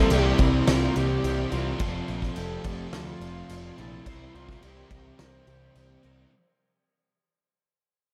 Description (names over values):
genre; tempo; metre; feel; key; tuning
rock, shoegaze and dream pop; 106 BPM; 4/4; straight; C mixolydian; A4 = 440 Hz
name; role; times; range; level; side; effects
mellow hollow silver concert flute; melody; 0.0-6.0 s; E4 to C5; -35 LUFS; equal; analog delay
string machine, full ensemble; sustained chords; 0.0-6.3 s; Bb3 to C6; -41 LUFS; equal; none
picked twelve-string acoustic guitar; arpeggios; 0.0-6.3 s; F4 to C5; -42 LUFS; equal; analog chorus, analog delay
overdriven electric guitar; riff; 0.0-6.3 s; C3 to Bb4; -34 LUFS; equal; reverse reverb
sludgy distorted guitar; riff; 0.0-6.3 s; F2 to C4; -37 LUFS; equal; none
thick fuzz guitar; riff; 0.0-6.3 s; F2 to C4; -37 LUFS; equal; none
growling picked electric bass; bass; 0.0-6.2 s; F1 to D2; -32 LUFS; equal; overdrive
loose indie drum kit; drums; 0.1-6.2 s; crash cymbal, kick drum, snare drum; -30 LUFS; equal; none
room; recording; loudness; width
light reverb, small room reverb; none; -26 LUFS; mono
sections
0.0-6.3 A section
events
fade-out 0.0-6.3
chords
0.0 C9sus4; 1.8 Fmaj7; 4.1 C7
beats
0.11 0.67 1.24 | 1.80 2.37 2.93 3.49 | 4.06 4.62 5.19 5.75